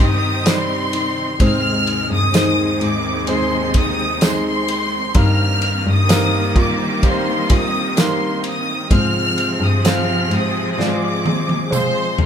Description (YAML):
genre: pop ballad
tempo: 64 BPM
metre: 4/4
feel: straight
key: Eb major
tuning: A4 = 441 Hz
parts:
  - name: warm studio violin section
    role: melody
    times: 0.0-12.3 s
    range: Bb4 to F6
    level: -21 LUFS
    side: equal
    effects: none
  - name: bright symphonic cello section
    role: second line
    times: 0.0-12.3 s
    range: Eb2 to C4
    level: -26 LUFS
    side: equal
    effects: none
  - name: warm concert grand piano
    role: accompaniment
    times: 0.0-12.3 s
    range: G2 to D5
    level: -23 LUFS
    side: right 1 dB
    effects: none
  - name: dark studio string section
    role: sustained chords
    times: 0.0-12.3 s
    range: C3 to Ab4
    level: -28 LUFS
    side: right 1 dB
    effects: none
  - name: picked steel-string acoustic guitar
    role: arpeggios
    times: 0.0-12.3 s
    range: Ab2 to C5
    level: -28 LUFS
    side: left 3 dB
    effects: none
  - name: muted cello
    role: bass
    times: 0.0-12.3 s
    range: G2 to Bb2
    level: -21 LUFS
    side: left 1 dB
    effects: none
  - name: loose indie drum kit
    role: drums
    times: 0.0-12.3 s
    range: kick drum, ride cymbal, snare drum, toms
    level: -18 LUFS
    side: equal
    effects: none
  - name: tambourine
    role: percussion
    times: 0.5-11.9 s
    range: none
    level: -31 LUFS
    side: right 7 dB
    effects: none
room: moderate studio reverb, RT60 0.5 s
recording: band playing live in one room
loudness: -15 LUFS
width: side -8 dB against mid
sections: 0.0-12.3 A section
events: drum fill 10.8-12.3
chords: 0.0 Cm; 1.4 Ab; 5.1 Eb6/G; 8.9 Fm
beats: 0.46 | 1.40 2.33 3.27 4.21 | 5.15 6.08 7.02 7.96 | 8.90 9.84 10.77 11.71